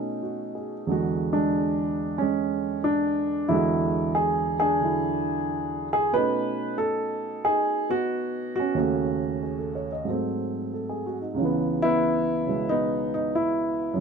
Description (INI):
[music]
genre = solo jazz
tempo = 92 BPM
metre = 4/4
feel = swing 68% on 8ths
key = unclear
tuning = A4 = 440 Hz
[part]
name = dark upright piano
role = solo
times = 0.0-14.0 s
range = C#2 to D#5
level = -23 LUFS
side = right 1 dB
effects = none
[sound]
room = little or no reverb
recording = close, detailed microphones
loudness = -23 LUFS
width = side -6 dB against mid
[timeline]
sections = 0.0-14.0 A section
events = none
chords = 0.0 B9; 0.9 E9; 6.1 B9; 8.8 D#m7b5; 10.1 G#7b9; 11.4 C#m7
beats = 0.22 | 0.88 1.53 2.19 2.85 | 3.50 4.16 4.82 5.47 | 6.13 6.79 7.44 8.10 | 8.75 9.40 10.06 10.71 | 11.37 12.02 12.67 13.32 | 13.97